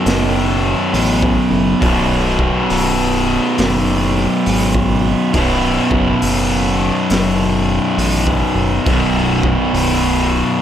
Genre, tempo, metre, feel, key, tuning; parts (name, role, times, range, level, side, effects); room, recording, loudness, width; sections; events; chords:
stoner and doom metal; 68 BPM; 4/4; swing 65% on 8ths; A4 = 440 Hz
fuzz guitar; riff; 0.0-10.6 s; B1 to B2; -14 LUFS; equal; distortion
fat analog bass; bass; 0.1-10.4 s; B0 to A1; -20 LUFS; equal; overdrive
raw garage drum kit; drums; 0.1-10.0 s; hi-hat, kick drum, snare drum; -22 LUFS; equal
studio reverb; -13 LUFS; side -10 dB against mid
0.0-10.6 A section
0.0 B5